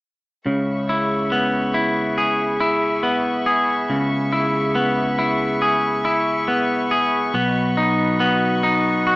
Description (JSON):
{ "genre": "post-rock", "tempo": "70 BPM", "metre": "4/4", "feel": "straight", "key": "C# minor", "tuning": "A4 = 439 Hz", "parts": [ { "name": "rich chamber string section", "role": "sustained chords", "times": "0.5-9.2 s", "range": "F#4 to C#6", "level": "-25 LUFS", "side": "equal", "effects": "none" }, { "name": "twangy electric guitar", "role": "arpeggios", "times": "0.5-9.2 s", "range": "C#3 to G#4", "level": "-18 LUFS", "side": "equal", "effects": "none" }, { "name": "picked electric bass", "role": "bass", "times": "0.5-9.2 s", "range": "B1 to C#2", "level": "-26 LUFS", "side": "equal", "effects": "none" } ], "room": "wet studio reverb, RT60 0.5 s", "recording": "band playing live in one room, small speaker sound", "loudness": "-17 LUFS", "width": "side -21 dB against mid", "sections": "0.5-9.2 A section", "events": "none", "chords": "0.5 C#m7; 7.3 Badd9", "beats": "| 0.46 1.32 2.18 3.04 | 3.90 4.76 5.62 6.48 | 7.34 8.20 9.06" }